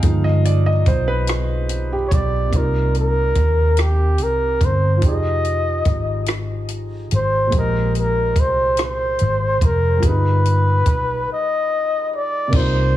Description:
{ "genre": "slow six-eight R&B", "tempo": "48 BPM (dotted quarters)", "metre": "6/8", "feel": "straight", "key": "C minor", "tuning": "A4 = 440 Hz", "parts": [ { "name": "dark grand piano", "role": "accompaniment", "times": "0.0-13.0 s", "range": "Bb2 to F5", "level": "-26 LUFS", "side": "right 2 dB", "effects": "none" }, { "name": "vintage muted fingered electric bass", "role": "bass", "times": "0.0-13.0 s", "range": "F1 to Eb2", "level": "-19 LUFS", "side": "equal", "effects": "none" }, { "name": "compact cocktail drum kit", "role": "drums", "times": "0.0-12.7 s", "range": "crash cymbal, hi-hat, kick drum, rim click", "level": "-20 LUFS", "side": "equal", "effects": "none" }, { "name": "breathy flugelhorn", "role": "melody", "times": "2.1-13.0 s", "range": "G4 to Eb5", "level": "-20 LUFS", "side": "left 1 dB", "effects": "tape echo" } ], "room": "light reverb", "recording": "heavily compressed radio sound, multiband compression, small room ambience", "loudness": "-16 LUFS", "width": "side -13 dB against mid", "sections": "0.0-2.5 A section; 2.5-12.5 B section", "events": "grand piano solo 0.0-2.5; break 11.3-12.5", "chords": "0.0 G7b9b13; 2.5 Cm11; 5.0 Fm9; 7.5 Bb13sus4; 10.0 G7b9b13" }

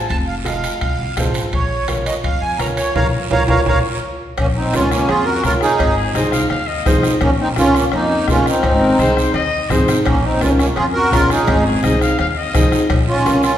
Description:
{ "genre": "latin, cumbia", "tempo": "169 BPM", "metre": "4/4", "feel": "straight", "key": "Bb harmonic minor, Bb minor from 4.4 s", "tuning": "A4 = 440 Hz", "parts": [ { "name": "upright bass", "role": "bass", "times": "0.0-13.5 s", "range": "F1 to F2", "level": "-22 LUFS", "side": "equal", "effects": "none" }, { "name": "accordion", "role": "melody", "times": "0.1-13.6 s", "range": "Bb3 to Bb5", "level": "-17 LUFS", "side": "right 1 dB", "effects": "light tremolo tuning" }, { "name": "bombo", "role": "percussion", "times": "0.1-13.6 s", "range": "none", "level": "-22 LUFS", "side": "left 2 dB", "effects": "none" }, { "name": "congas", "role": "percussion", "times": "0.1-13.4 s", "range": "none", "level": "-26 LUFS", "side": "right 1 dB", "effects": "none" }, { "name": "guiro", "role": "percussion", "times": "0.1-13.6 s", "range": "none", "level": "-30 LUFS", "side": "right 5 dB", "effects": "none" }, { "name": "timbales and cowbell", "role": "percussion", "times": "0.1-13.1 s", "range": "none", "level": "-28 LUFS", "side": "right 2 dB", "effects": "none" }, { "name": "warm upright piano", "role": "accompaniment", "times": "0.4-13.5 s", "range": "C4 to Eb5", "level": "-21 LUFS", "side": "equal", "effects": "none" }, { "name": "clear trumpet", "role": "second line", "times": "6.0-13.0 s", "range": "Ab4 to F5", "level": "-23 LUFS", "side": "left 4 dB", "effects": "none" } ], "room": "wet recital hall reverb, RT60 1.7 s", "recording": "recorded in a church or concert hall", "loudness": "-14 LUFS", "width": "side -11 dB against mid", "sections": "0.0-4.4 A section; 4.4-13.6 B section", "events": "band accent 3.0-4.4; drum fill 3.7-4.4", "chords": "0.0 F7; 1.5 Bbm; 5.8 Ab; 7.2 Bbm; 8.6 Ab; 10.1 Bbm; 11.5 Ab; 12.9 Bbm" }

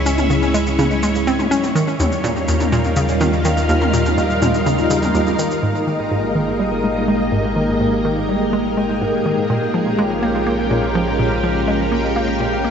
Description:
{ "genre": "ambient, sequencer-driven space music", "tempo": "124 BPM", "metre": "4/4", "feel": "straight", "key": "unclear", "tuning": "A4 = 440 Hz", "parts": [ { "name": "string machine, full ensemble", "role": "sustained chords", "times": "0.0-12.7 s", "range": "G3 to F5", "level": "-18 LUFS", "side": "equal", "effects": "ensemble chorus" }, { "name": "round analog bass", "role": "bass", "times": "0.0-12.7 s", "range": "Ab1 to Eb2", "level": "-25 LUFS", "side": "equal", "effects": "none" }, { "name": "hollow square pluck", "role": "riff", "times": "0.1-12.7 s", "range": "Eb2 to Db4", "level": "-20 LUFS", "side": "equal", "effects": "chorus, tape echo" }, { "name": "electronic shaker and toms", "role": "percussion", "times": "0.1-5.6 s", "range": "none", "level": "-24 LUFS", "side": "left 1 dB", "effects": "tape echo" }, { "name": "bubbling stepped-filter texture", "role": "texture", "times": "5.6-12.7 s", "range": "G4 to G5", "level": "-26 LUFS", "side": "right 2 dB", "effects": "chorus, built-in reverb" } ], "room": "wet huge ambient reverb, RT60 7.8 s", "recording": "nothing above 7.8 kHz", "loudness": "-15 LUFS", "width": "side -7 dB against mid", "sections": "0.0-5.6 A section; 5.6-12.7 B section", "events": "none", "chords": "0.0 Dbm; 1.8 Ebadd9; 5.6 Absus2; 9.5 Bbm7" }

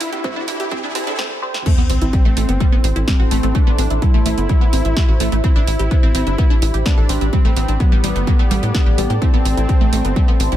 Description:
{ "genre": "melodic techno", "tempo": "127 BPM", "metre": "4/4", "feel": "straight", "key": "A minor", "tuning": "A4 = 437 Hz", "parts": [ { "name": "wide unison lead", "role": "melody", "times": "0.0-10.5 s", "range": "B3 to E4", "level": "-25 LUFS", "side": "equal", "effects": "cassette tape, sidechain pumping, dub echo" }, { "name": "dark analog pad", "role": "sustained chords", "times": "0.2-10.6 s", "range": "G4 to D6", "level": "-31 LUFS", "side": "right 3 dB", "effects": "chorus, sidechain pumping" }, { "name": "wide unison pluck", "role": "arpeggios", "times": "0.0-10.6 s", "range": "F#3 to A4", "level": "-23 LUFS", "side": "right 1 dB", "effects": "vintage 12-bit sampler grit, sidechain pumping, ping-pong delay" }, { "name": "filtered dub chord stab", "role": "stabs", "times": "0.0-1.6, 9.2-10.6 s", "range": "A3 to C5", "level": "-30 LUFS", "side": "right 1 dB", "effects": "phaser, analog chorus, sidechain pumping, ping-pong delay" }, { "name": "tight sequencer bass", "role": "bass", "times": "0.0-10.6 s", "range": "G1 to A2", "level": "-19 LUFS", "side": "equal", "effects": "sidechain pumping, high-pass filter" }, { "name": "techno drum kit", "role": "drums", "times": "0.0-10.6 s", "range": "crash cymbal, hi-hat, snare drum", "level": "-26 LUFS", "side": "right 2 dB", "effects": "none" }, { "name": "riser and sub drop", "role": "sound effects", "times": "0.0-3.5 s", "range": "none", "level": "-26 LUFS", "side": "equal", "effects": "none" }, { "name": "warbly tape-like pad", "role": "texture", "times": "0.0-10.6 s", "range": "C4 to C6", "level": "-29 LUFS", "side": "left 1 dB", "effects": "chorus, built-in reverb, phaser, sidechain pumping" }, { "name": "electronic kick drum", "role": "drums", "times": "0.2-10.3 s", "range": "none", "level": "-15 LUFS", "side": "equal", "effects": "none" } ], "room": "digital ambience", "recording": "high-pass filter", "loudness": "-14 LUFS", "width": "side -12 dB against mid", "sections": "0.0-1.7 A section; 1.7-10.6 B section", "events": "build-up 0.0-1.7; riser 0.0-1.2; filter sweep on synth arpeggio sound 0.0-1.7; filter sweep on analog synth lead 0.0-1.7; filter sweep on synth stab 0.0-1.7; drum fill 1.2-1.7; drop 1.7-10.6; impact 1.7-3.5", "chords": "0.0 Gsus2; 1.7 Am; 5.4 Cmaj7; 7.3 Gsus2" }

